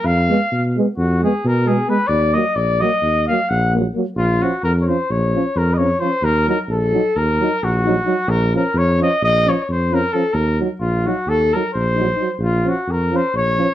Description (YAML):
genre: balkan folk, Balkan brass band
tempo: 263 BPM (eighths)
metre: 9/8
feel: straight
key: Eb harmonic minor, Bb harmonic minor from 4.2 s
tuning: A4 = 437 Hz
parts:
  - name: mellow cornet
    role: melody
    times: 0.0-13.7 s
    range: F4 to Gb5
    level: -19 LUFS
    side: left 1 dB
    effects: slapback echo
  - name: mellow tuba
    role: bass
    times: 0.0-13.6 s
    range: Bb1 to Cb3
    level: -19 LUFS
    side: equal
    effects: none
  - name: dark euphonium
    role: accompaniment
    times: 0.3-13.7 s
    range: Bb3 to Eb4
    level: -24 LUFS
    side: left 4 dB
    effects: none
  - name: warm euphonium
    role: accompaniment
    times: 0.3-13.7 s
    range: F3 to Ab3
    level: -22 LUFS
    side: right 5 dB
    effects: none
room: moderate studio ambience, RT60 0.5 s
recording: dark, warm production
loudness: -15 LUFS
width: side -12 dB against mid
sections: 0.0-4.2 A section; 4.2-13.7 B section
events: cornet solo 0.0-4.2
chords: 0.1 Fdim; 2.1 Ebm; 4.2 Bbm; 6.2 Ebm; 8.3 Bbm; 10.3 Ebm; 12.4 Bbm